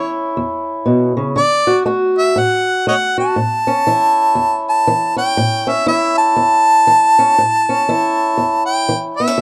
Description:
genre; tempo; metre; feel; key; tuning
acoustic country blues, solo or duo; 120 BPM; 4/4; swing 61% on 8ths; A mixolydian; A4 = 440 Hz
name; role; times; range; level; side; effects
warm harmonica; melody; 0.0-9.4 s; C#5 to A5; -16 LUFS; equal; none
fingerpicked swing-style acoustic guitar; accompaniment; 0.0-9.4 s; E2 to F#4; -20 LUFS; equal; none
room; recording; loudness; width
small room reverb; dry, close 1970s-style studio recording; -15 LUFS; mono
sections
0.0-9.4 A section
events
none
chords
0.0 A (rootless); 1.4 D; 3.4 A

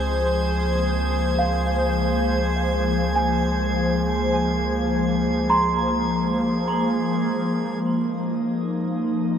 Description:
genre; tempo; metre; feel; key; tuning
ambient; 51 BPM; 3/4; straight; unclear; A4 = 440 Hz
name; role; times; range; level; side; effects
airy breathy pad; sustained chords; 0.0-9.4 s; F3 to C5; -22 LUFS; left 1 dB; chorus
small celesta; arpeggios; 0.0-9.4 s; Ab4 to C6; -27 LUFS; right 2 dB; tape echo
deep rumbling drone; bass; 0.0-7.8 s; Db2; -27 LUFS; equal; built-in reverb
drifting glass-harmonics texture; texture; 0.0-9.4 s; Ab4 to Ab6; -29 LUFS; equal; chorus, built-in reverb
room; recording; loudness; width
wet huge ambient reverb, RT60 7.7 s; none; -20 LUFS; side -8 dB against mid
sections
0.0-7.8 A section; 7.8-9.4 B section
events
filter sweep on analog synth pad 7.8-9.4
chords
0.0 Fm/Db; 7.8 Db69 (rootless)

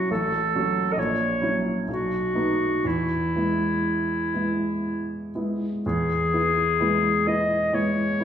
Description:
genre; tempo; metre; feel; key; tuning
classical, romantic duo for clarinet and grand piano; 59-70 BPM; 3/4; rubato; E major; A4 = 440 Hz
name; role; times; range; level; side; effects
bright clarinet; melody; 0.0-8.2 s; E4 to D#5; -24 LUFS; left 1 dB; none
warm baby grand piano; accompaniment; 0.0-8.2 s; A1 to F#4; -25 LUFS; right 1 dB; none
room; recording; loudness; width
wet recital hall reverb, RT60 1.6 s; heard from further back in the room, nothing above 10.3 kHz; -22 LUFS; side -9 dB against mid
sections
0.0-5.8 A section; 5.8-8.2 B section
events
none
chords
0.1 F#m/A; 1.0 F#7/A#; 1.9 B7; 2.8 E

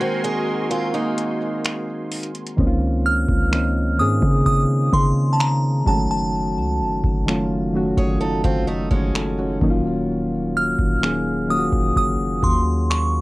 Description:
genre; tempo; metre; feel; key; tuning
contemporary R&B; 64 BPM; 4/4; straight; Db major; A4 = 440 Hz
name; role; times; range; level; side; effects
soft electric-piano-like synth keys; accompaniment; 0.0-13.2 s; Eb3 to A4; -23 LUFS; equal; chorus, cassette tape
warm analog pad; sustained chords; 0.0-2.5 s; Gb4 to C6; -28 LUFS; equal; chorus, phaser, sidechain pumping, cassette tape
picked acoustic archtop guitar; arpeggios; 0.0-2.3, 8.0-9.6 s; Ab3 to Db5; -26 LUFS; right 3 dB; cassette tape, tape echo
booming analog drum machine; drums; 0.2-13.1 s; finger snaps, hi-hat, kick drum; -21 LUFS; equal; cassette tape
long sustained 808-style bass; bass; 2.6-13.2 s; Eb1 to Db3; -23 LUFS; equal; none
glassy synth bell; melody; 3.1-13.2 s; A5 to F6; -23 LUFS; equal; chorus, tape echo
room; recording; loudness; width
little or no reverb; home recording on cassette; -18 LUFS; side -20 dB against mid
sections
0.0-2.6 A section; 2.6-13.2 B section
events
break 0.0-2.6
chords
0.0 Ab9; 2.6 Dbmaj13; 5.9 Gbm6; 9.6 Ebm9

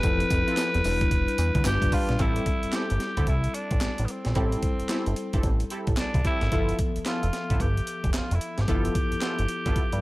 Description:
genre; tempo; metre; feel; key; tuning
R&B, new jack swing; 111 BPM; 4/4; swing 62% on 16ths; A minor; A4 = 440 Hz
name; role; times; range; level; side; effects
raspy tenor saxophone; melody; 0.0-10.0 s; B3 to B4; -30 LUFS; equal; none
tine electric piano; accompaniment; 0.0-10.0 s; F3 to E5; -32 LUFS; left 3 dB; medium tremolo
fat analog bass; bass; 0.0-10.0 s; E1 to G2; -26 LUFS; equal; none
breakbeat sampler-style drum kit; drums; 0.0-10.0 s; handclaps, hi-hat, kick drum, snare drum, tambourine; -27 LUFS; equal; none
funky polysynth comp; stabs; 0.5-9.8 s; B3 to B4; -34 LUFS; right 1 dB; chorus
room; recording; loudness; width
little or no reverb; none; -23 LUFS; side -19 dB against mid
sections
0.0-2.2 A section; 2.2-10.0 B section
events
none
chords
0.0 Fmaj7; 0.8 Em7; 1.7 G7; 2.2 Am7; 6.5 G13

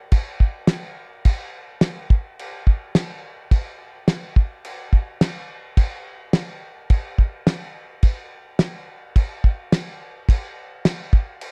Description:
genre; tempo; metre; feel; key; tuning
rock; 106 BPM; 4/4; straight; none; none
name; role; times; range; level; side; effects
cloth-damped thuddy drum kit; drums; 0.1-11.5 s; crash cymbal, kick drum, snare drum; -21 LUFS; equal; none
room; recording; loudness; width
little or no reverb; dry, close 1970s-style studio recording; -22 LUFS; mono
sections
0.0-11.5 A section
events
none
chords
none

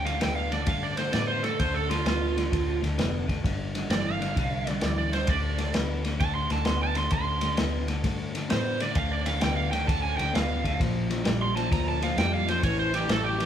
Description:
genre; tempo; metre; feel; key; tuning
electric blues shuffle; 130 BPM; 4/4; swing 66% on 8ths; D minor; A4 = 439 Hz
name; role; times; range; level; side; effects
overdriven slide guitar; second line; 0.0-13.5 s; F4 to C6; -29 LUFS; right 5 dB; none
electric guitar through a small old amp; riff; 0.0-13.5 s; G2 to B3; -31 LUFS; left 3 dB; none
vintage muted fingered electric bass; bass; 0.0-13.5 s; F1 to A2; -31 LUFS; equal; none
vintage drum kit; drums; 0.1-13.5 s; kick drum, ride cymbal, snare drum; -29 LUFS; equal; none
room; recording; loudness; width
moderate large studio reverb, RT60 1.3 s; band playing live in one room; -24 LUFS; side -9 dB against mid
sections
0.0-13.5 A section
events
electric slide guitar solo 0.0-13.5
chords
0.0 Dm; 3.4 G5; 5.3 D7(no3); 10.8 Bb; 12.6 A5

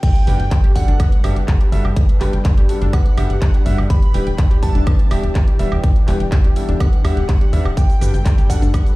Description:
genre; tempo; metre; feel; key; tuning
progressive house; 124 BPM; 4/4; straight; G major; A4 = 441 Hz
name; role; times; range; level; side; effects
glassy synth bell; melody; 0.0-9.0 s; F#5 to B5; -32 LUFS; right 3 dB; chorus, sidechain pumping, ping-pong delay
soft supersaw; second line; 0.0-9.0 s; F#5 to B5; -36 LUFS; right 2 dB; sidechain pumping, dub echo
lush unison pad; sustained chords; 0.0-9.0 s; E3 to B4; -29 LUFS; equal; chorus, vintage 12-bit sampler grit, sidechain pumping
wide unison pluck; arpeggios; 0.0-8.9 s; D4 to G5; -28 LUFS; left 1 dB; auto-pan, sidechain pumping, dub echo
electronic kick drum; drums; 0.0-8.8 s; none; -14 LUFS; equal; overdrive
house drum kit; drums; 0.0-9.0 s; crash cymbal, handclaps, hi-hat, shaker, woodblock; -32 LUFS; right 1 dB; none
impact; sound effects; 0.1-2.0 s; none; -27 LUFS; equal; none
clear baby grand piano; stabs; 0.3-9.0 s; G2 to E5; -27 LUFS; left 1 dB; sidechain pumping, dub echo
tight sequencer bass; bass; 0.3-8.7 s; E1 to E2; -17 LUFS; equal; sidechain pumping
room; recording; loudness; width
little or no reverb; played on a big sound system in a bare room, large studio reverb, high-pass filter; -13 LUFS; side -20 dB against mid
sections
0.0-9.0 A section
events
drop 0.0-9.0; impact 0.0-2.0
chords
0.0 Gmaj7; 3.9 Em7; 7.8 Gmaj7

